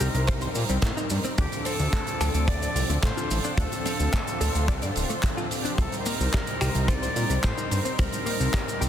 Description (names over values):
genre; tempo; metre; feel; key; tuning
nu-disco, nu disco; 109 BPM; 4/4; straight; C dorian; A4 = 439 Hz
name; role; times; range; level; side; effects
breathy bright jazz flute; melody; 0.0-8.9 s; G4 to D5; -34 LUFS; equal; vintage 12-bit sampler grit, dub echo
warm analog pad; accompaniment; 0.0-8.9 s; F3 to Bb4; -32 LUFS; right 1 dB; chorus, sidechain pumping
rich chamber string section; sustained chords; 0.0-8.9 s; C5 to D6; -37 LUFS; left 2 dB; sidechain pumping
direct-recorded clean electric guitar; riff; 0.0-8.9 s; G3 to D5; -34 LUFS; left 2 dB; analog chorus, vintage 12-bit sampler grit
fat analog bass; bass; 0.0-8.9 s; D1 to Bb2; -26 LUFS; equal; none
big rock drum kit; drums; 0.0-8.9 s; finger snaps, handclaps, hi-hat, shaker; -32 LUFS; right 1 dB; none
kick drum; drums; 0.3-8.7 s; none; -28 LUFS; equal; soft clipping on kick
room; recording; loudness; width
little or no reverb; dense, heavily limited modern master; -23 LUFS; side -10 dB against mid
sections
0.0-8.9 A section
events
none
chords
0.0 Cm7; 1.4 Dm7; 5.8 Cm7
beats
0.28 0.83 | 1.38 1.93 2.48 3.03 | 3.58 4.13 4.68 5.23 | 5.79 6.33 6.89 7.44 | 7.99 8.54